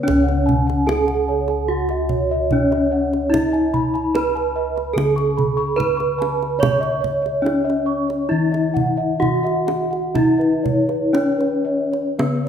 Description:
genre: Javanese gamelan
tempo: 56-73 BPM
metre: 4/4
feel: straight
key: Db slendro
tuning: A4 = 445 Hz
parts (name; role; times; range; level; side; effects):
- gamelan-type bronze metallophone; melody; 0.0-12.5 s; Cb4-45c to Db5; -20 LUFS; equal; none
- gamelan-type bossed gongs; arpeggios; 0.0-12.5 s; Cb5-45c to Db6; -26 LUFS; left 3 dB; none
- gamelan-type bossed gongs; bass; 0.0-12.5 s; Db2 to Db5; -23 LUFS; equal; none
- gamelan-type bronze metallophone; arpeggios; 0.1-12.5 s; Cb5-45c to Db6; -27 LUFS; right 6 dB; none
- kendang; percussion; 0.1-12.4 s; none; -25 LUFS; right 3 dB; none
room: wet recital hall reverb, RT60 1.5 s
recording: minimal, uncompressed stereo recording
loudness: -17 LUFS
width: side -8 dB against mid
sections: 0.0-12.5 A section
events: none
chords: none

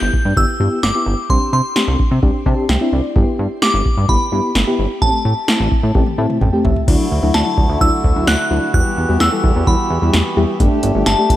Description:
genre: synth-pop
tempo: 129 BPM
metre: 4/4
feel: straight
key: G major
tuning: A4 = 440 Hz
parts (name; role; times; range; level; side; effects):
- glassy synth bell; melody; 0.0-11.4 s; A5 to G6; -20 LUFS; equal; chorus, slapback echo, shimmer reverb
- mellow FM electric piano; accompaniment; 0.0-11.4 s; F#3 to A5; -20 LUFS; left 2 dB; chorus, tremolo, shimmer reverb
- chorused synth bass; bass; 0.0-11.4 s; G1 to C3; -17 LUFS; equal; none
- electro analog drum machine; drums; 0.1-11.4 s; crash cymbal, hi-hat, kick drum, snare drum, toms; -17 LUFS; equal; none
- pedal harmonium; sustained chords; 6.9-11.4 s; D3 to G4; -22 LUFS; right 1 dB; shimmer reverb
room: light reverb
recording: none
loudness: -13 LUFS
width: side -14 dB against mid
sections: 0.0-6.9 A section; 6.9-11.4 B section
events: FM electric piano fill 2.2-3.2, 5.9-6.9; drum fill 5.9-6.9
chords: 0.0 G6; 1.3 Csus2; 3.2 G6; 5.0 Am7; 6.9 Dadd9; 8.7 Emadd9; 10.6 Gsus2

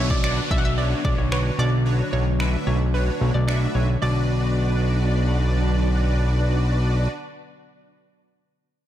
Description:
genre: dance-pop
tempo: 111 BPM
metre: 4/4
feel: straight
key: B minor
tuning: A4 = 441 Hz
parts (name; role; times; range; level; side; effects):
- hollow square pluck; melody; 0.0-7.1 s; B4 to F#5; -31 LUFS; left 1 dB; chorus, digital delay
- hollow square pluck; melody; 0.0-5.6 s; B4 to D5; -33 LUFS; right 4 dB; chorus, sidechain pumping, digital delay
- big bright polysynth; accompaniment; 0.0-7.1 s; D4 to E5; -29 LUFS; equal; ensemble chorus
- string machine, cellos; sustained chords; 0.0-7.1 s; D3 to D4; -30 LUFS; equal; phaser, ensemble chorus, sidechain pumping
- fat analog bass; bass; 0.0-7.1 s; B1; -20 LUFS; equal; sidechain pumping
- downlifter; sound effects; 0.0-4.0 s; none; -34 LUFS; equal; none
- punchy analog drum machine; drums; 0.1-3.6 s; finger snaps, kick drum; -25 LUFS; equal; overdrive
room: light reverb, digital ambience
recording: dark, warm production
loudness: -19 LUFS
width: side -12 dB against mid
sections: 0.0-4.0 A section; 4.0-8.3 B section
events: none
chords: 0.0 Bmadd9; 4.0 Bm

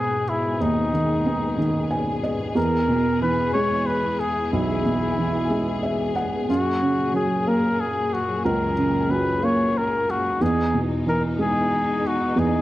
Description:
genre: pop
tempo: 61 BPM (dotted quarters)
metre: 6/8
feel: straight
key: unclear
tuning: A4 = 439 Hz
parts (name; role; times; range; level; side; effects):
- clear flugelhorn; melody; 0.0-12.6 s; D#4 to C#5; -24 LUFS; left 2 dB; cassette tape
- felt-muted upright piano; accompaniment; 0.0-12.6 s; B1 to G#5; -23 LUFS; right 2 dB; cassette tape
- warm studio string section; sustained chords; 0.0-12.6 s; E2 to G#4; -28 LUFS; left 3 dB; cassette tape
room: moderate spring reverb, RT60 1.3 s, small room reverb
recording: home recording on cassette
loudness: -20 LUFS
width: side -15 dB against mid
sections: 0.0-12.6 A section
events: felt piano fill 1.6-2.6, 5.5-6.5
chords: 0.0 G#m; 2.6 E; 6.5 F#add9; 10.4 Emaj7

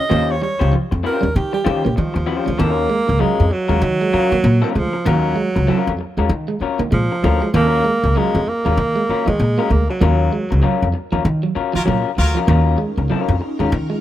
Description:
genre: funk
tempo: 97 BPM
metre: 4/4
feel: swing 60% on 16ths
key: unclear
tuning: A4 = 440 Hz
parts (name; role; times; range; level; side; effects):
- breathy alto saxophone; melody; 0.0-11.1 s; F3 to Eb5; -20 LUFS; right 2 dB; none
- electric guitar through a small old amp; accompaniment; 0.0-13.8 s; Gb3 to C5; -23 LUFS; left 8 dB; none
- electric guitar at the edge of break-up; riff; 0.1-14.0 s; F3 to Bb3; -25 LUFS; right 5 dB; none
- upright bass; bass; 0.1-13.9 s; Db2 to Eb3; -18 LUFS; equal; none
- clear horn section; second line; 11.8-12.4 s; Gb3 to Bb4; -25 LUFS; equal; none
- phased string machine; sustained chords; 12.8-14.0 s; Db4 to Bb4; -27 LUFS; left 1 dB; ensemble chorus, phaser
room: small room ambience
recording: rough home demo mix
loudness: -15 LUFS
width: side -13 dB against mid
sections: 0.0-2.6 A section; 2.6-14.0 B section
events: alto saxophone solo 0.0-2.6; band accent 10.0-12.5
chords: 0.0 Eb13; 2.6 Ebm9

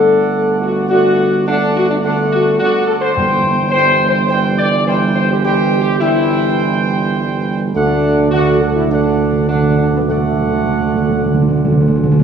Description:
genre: classical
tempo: 104 BPM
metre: 4/4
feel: straight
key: unclear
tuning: A4 = 440 Hz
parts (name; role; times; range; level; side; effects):
- mellow trumpet section; melody; 0.0-12.2 s; C5 to G5; -21 LUFS; right 4 dB; none
- clear trombone section; sustained chords; 0.0-12.2 s; D3 to A3; -20 LUFS; right 1 dB; none
- warm French horn section; sustained chords; 0.0-11.9 s; A3 to D5; -16 LUFS; left 2 dB; none
- mellow tuba; bass; 0.0-12.2 s; G1 to D2; -18 LUFS; right 5 dB; none
- timpani; percussion; 3.2-4.0, 7.8-12.2 s; G2 to D3; -18 LUFS; right 1 dB; none
room: wet scoring stage reverb, RT60 1.7 s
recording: none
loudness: -12 LUFS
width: side -7 dB against mid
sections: 0.0-12.2 A section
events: timpani fill 7.8-12.2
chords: 0.0 D/G; 3.2 C/G; 7.8 D

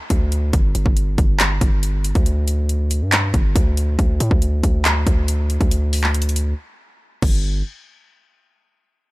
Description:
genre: hip hop, trap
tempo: 139 BPM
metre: 4/4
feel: half-time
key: unclear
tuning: A4 = 439 Hz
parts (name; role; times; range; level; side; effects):
- distorted 808-style bass; bass; 0.1-7.6 s; G1 to A2; -19 LUFS; equal; distortion
- trap drum kit; drums; 0.1-7.3 s; crash cymbal, handclaps, hi-hat, kick drum; -18 LUFS; equal; overdrive
room: little or no reverb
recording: none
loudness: -16 LUFS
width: side -20 dB against mid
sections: 0.0-7.4 A section; 7.4-9.1 B section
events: break 6.6-7.4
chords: none

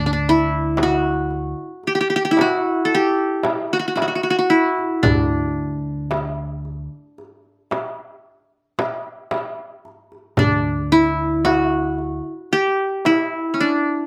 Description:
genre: Arabic maqam ensemble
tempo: 112 BPM (eighths)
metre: 10/8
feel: straight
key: D maqam ajam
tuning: A4 = 437 Hz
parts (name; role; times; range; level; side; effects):
- qanun; melody; 0.0-14.1 s; C#4 to A4; -20 LUFS; equal; none
- upright bass; bass; 0.0-12.2 s; D2; -28 LUFS; equal; none
- darbuka; percussion; 0.8-13.3 s; none; -28 LUFS; equal; slapback echo
- frame drum; percussion; 0.8-13.3 s; none; -27 LUFS; equal; none
room: little or no reverb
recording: recorded outdoors, with no room sound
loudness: -20 LUFS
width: mono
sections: 0.0-14.1 A section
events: none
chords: none

